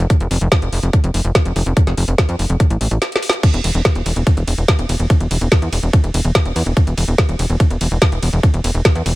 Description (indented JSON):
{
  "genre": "psychedelic trance",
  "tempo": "144 BPM",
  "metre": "4/4",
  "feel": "straight",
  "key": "unclear",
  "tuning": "A4 = 440 Hz",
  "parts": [
    { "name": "tight sequencer bass", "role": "bass", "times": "0.0-9.1 s", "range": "E1 to F2", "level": "-17 LUFS", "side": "equal", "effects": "none" },
    { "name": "drum and bass drum kit", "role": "drums", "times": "0.0-9.1 s", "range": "crash cymbal, hi-hat, ride cymbal, snare drum", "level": "-21 LUFS", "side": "equal", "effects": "none" },
    { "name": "electronic kick drum", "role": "drums", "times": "0.1-8.9 s", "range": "none", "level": "-13 LUFS", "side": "equal", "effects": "none" }
  ],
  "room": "little or no reverb",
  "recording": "none",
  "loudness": "-14 LUFS",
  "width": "side -19 dB against mid",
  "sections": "0.0-9.2 A section",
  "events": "break 3.0-3.4; drum fill 3.0-3.4",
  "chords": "none"
}